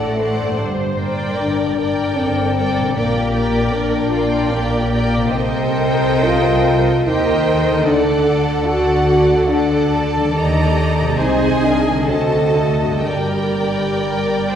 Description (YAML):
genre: classical, slow romantic movement for symphony orchestra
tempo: 59-78 BPM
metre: 3/4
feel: rubato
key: G minor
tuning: A4 = 441 Hz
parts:
  - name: warm symphonic violin section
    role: melody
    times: 0.0-14.6 s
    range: F4 to C5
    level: -26 LUFS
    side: left 1 dB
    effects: none
  - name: rich studio violin section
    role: second line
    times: 0.0-14.6 s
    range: D5 to Bb5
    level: -23 LUFS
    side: equal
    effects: none
  - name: warm chamber viola section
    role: accompaniment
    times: 0.0-14.6 s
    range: F#4 to D5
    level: -23 LUFS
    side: right 2 dB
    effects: none
  - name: mellow French horn section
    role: sustained chords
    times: 0.0-14.6 s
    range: G3 to F#4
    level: -19 LUFS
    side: left 2 dB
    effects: none
  - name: concert harp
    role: arpeggios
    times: 0.0-14.6 s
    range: G2 to Bb4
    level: -26 LUFS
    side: left 1 dB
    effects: none
  - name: dark studio double bass section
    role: bass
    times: 0.0-14.6 s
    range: G1 to Eb2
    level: -23 LUFS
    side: right 1 dB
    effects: none
  - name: rich symphonic cello section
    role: bass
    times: 0.0-14.6 s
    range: G2 to Eb3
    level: -23 LUFS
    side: right 2 dB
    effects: none
room: wet recital hall reverb, RT60 1.5 s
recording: heard from further back in the room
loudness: -14 LUFS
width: side -9 dB against mid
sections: 0.0-14.6 A section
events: none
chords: 0.0 D7/A; 0.6 Gm; 3.0 Gm/Bb; 5.3 Cm7; 7.9 D; 10.3 Ebmaj7; 11.2 Ab/C; 12.1 D7b9; 13.0 Gm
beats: | 0.59 1.39 2.17 | 2.96 3.74 4.53 | 5.35 6.24 7.08 | 7.88 8.68 9.50 | 10.34 11.19 12.08 | 13.03 14.02